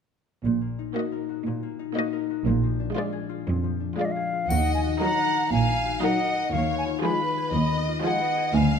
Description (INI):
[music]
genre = cinematic, playful, whimsical film cue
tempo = 119 BPM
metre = 4/4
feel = straight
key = Eb minor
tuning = A4 = 440 Hz
[part]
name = concert harp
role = arpeggios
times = 0.4-8.8 s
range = Bb2 to Eb5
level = -30 LUFS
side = left 13 dB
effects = none
[part]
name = rich chamber double bass section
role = bass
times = 0.4-8.8 s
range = Bb1 to Eb2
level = -28 LUFS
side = right 4 dB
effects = none
[part]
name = rich symphonic cello section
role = bass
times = 0.4-8.8 s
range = D2 to Bb2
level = -27 LUFS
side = right 4 dB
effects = none
[part]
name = warm chamber violin section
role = melody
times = 1.0-8.4 s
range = Ab4 to Eb5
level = -35 LUFS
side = left 2 dB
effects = none
[part]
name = rich studio violin section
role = second line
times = 1.0-8.8 s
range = F4 to Gb5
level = -31 LUFS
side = left 1 dB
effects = none
[part]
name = rich symphonic viola section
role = accompaniment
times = 1.0-8.4 s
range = F3 to F4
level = -32 LUFS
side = right 3 dB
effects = none
[part]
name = concert flute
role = second line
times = 4.0-8.8 s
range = Eb5 to Cb6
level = -26 LUFS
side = equal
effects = none
[part]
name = triangle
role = percussion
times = 4.5-5.5 s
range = none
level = -40 LUFS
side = right 1 dB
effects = none
[part]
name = dark French horn section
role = sustained chords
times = 5.0-8.2 s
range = Gb3 to F4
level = -33 LUFS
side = left 4 dB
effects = none
[sound]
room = moderate scoring stage reverb, RT60 2.0 s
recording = none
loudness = -23 LUFS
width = side -6 dB against mid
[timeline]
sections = 0.5-4.5 A section; 4.5-8.8 B section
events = none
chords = 0.5 Ebm/Bb; 2.5 Bb7; 4.5 Ebm; 6.5 Fm7b5/Eb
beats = | 0.46 0.97 1.47 1.97 | 2.47 2.96 3.47 3.98 | 4.50 5.01 5.52 6.03 | 6.53 7.04 7.54 8.04 | 8.54